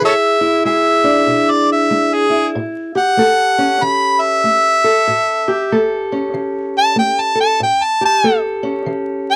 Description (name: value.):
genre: acoustic country blues, solo or duo.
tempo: 95 BPM.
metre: 4/4.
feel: swing 62% on 8ths.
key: unclear.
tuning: A4 = 440 Hz.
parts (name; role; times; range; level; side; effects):
warm harmonica; melody; 0.0-9.4 s; G#4 to B5; -16 LUFS; equal; none.
fingerpicked steel-string acoustic guitar; accompaniment; 0.0-9.4 s; A2 to A4; -20 LUFS; equal; none.
room: light reverb.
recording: dry, close 1970s-style studio recording, vinyl crackle.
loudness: -15 LUFS.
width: mono.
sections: 0.0-9.4 A section.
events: harmonica solo 0.0-9.4.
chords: 0.0 E7; 2.6 A7.